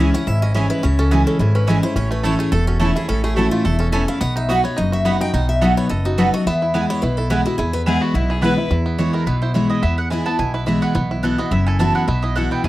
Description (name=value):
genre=bluegrass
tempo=213 BPM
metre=4/4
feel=swing 54% on 8ths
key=E major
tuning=A4 = 441 Hz
part: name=bluegrass banjo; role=melody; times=0.0-12.7 s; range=A3 to A4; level=-26 LUFS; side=right 4 dB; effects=none
part: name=picked steel-string acoustic guitar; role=accompaniment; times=0.0-12.7 s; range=E2 to F#4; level=-20 LUFS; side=left 1 dB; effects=none
part: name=mandolin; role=stabs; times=0.0-12.7 s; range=A3 to B5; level=-23 LUFS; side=right 4 dB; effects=none
part: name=upright bass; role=bass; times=0.0-12.7 s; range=E1 to E2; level=-20 LUFS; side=equal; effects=none
part: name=picked steel-string acoustic guitar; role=melody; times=0.1-7.8 s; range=E4 to G#5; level=-24 LUFS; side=left 2 dB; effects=none
part: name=clear fiddle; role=second line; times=7.9-8.7 s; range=E4 to B4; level=-25 LUFS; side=left 5 dB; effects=none
room=light reverb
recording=dry, close 1970s-style studio recording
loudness=-16 LUFS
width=side -16 dB against mid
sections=0.0-8.7 A section; 8.7-12.7 B section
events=mandolin solo 8.7-12.7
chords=0.0 C#m; 2.0 A; 4.2 B; 6.5 E; 11.0 Bsus4